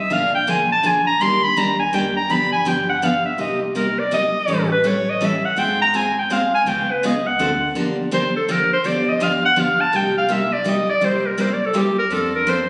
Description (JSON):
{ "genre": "acoustic string swing (jazz manouche)", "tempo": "165 BPM", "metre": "3/4", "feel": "swing 60% on 8ths", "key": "C minor, G minor from 7.7 s", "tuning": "A4 = 441 Hz", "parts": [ { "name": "breathy clarinet", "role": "melody", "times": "0.0-12.7 s", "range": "G4 to C6", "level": "-20 LUFS", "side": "equal", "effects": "none" }, { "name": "picked steel-string acoustic guitar", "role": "accompaniment", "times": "0.1-12.6 s", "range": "C3 to A4", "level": "-24 LUFS", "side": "equal", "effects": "none" }, { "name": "upright bass", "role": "bass", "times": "0.1-12.7 s", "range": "G1 to G2", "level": "-35 LUFS", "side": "equal", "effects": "none" } ], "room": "wet concert hall reverb, RT60 1.8 s", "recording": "recorded on a phone in the room, club reverb, nothing above 10.5 kHz", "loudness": "-19 LUFS", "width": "mono", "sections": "0.0-7.7 A section; 7.7-12.7 A section", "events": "clarinet solo 0.0-7.7, 7.7-12.7", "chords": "0.1 Bb7; 1.2 Ebmaj7; 2.3 G7; 3.4 Cm7; 4.5 A7; 5.6 Ab6; 6.7 Db7; 7.4 D7; 7.7 Gm7; 8.8 G7; 9.9 Cm7; 11.0 C7; 12.1 F6", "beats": "| 0.10 0.47 0.83 | 1.20 1.56 1.92 | 2.29 2.65 3.02 | 3.38 3.75 4.11 | 4.47 4.84 5.20 | 5.57 5.93 6.29 | 6.66 7.02 7.38 | 7.75 8.11 8.47 | 8.84 9.20 9.57 | 9.93 10.29 10.66 | 11.02 11.38 11.75 | 12.11 12.47" }